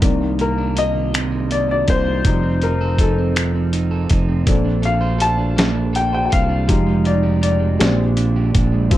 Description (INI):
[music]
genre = slow six-eight R&B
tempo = 54 BPM (dotted quarters)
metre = 6/8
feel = straight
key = unclear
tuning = A4 = 435 Hz
[part]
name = electric guitar at the edge of break-up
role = second line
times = 0.0-9.0 s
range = G2 to C5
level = -22 LUFS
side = right 6 dB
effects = spring reverb
[part]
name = warm baby grand piano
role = accompaniment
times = 0.0-9.0 s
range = Eb3 to A5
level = -21 LUFS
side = left 4 dB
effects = plate reverb
[part]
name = fingered electric bass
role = bass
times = 0.0-9.0 s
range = F1 to Eb2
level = -20 LUFS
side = equal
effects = none
[part]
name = dusty soul sampler-style drum kit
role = drums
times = 0.0-9.0 s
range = finger snaps, hi-hat, kick drum, snare drum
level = -18 LUFS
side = equal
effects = overdrive
[sound]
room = light reverb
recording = dark, warm production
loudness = -15 LUFS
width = side -14 dB against mid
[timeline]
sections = 0.0-9.0 A section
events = grand piano solo 0.0-9.0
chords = 0.0 Cm9; 2.2 F7; 4.5 Bbmaj9; 6.7 Fm9; 7.8 Bb13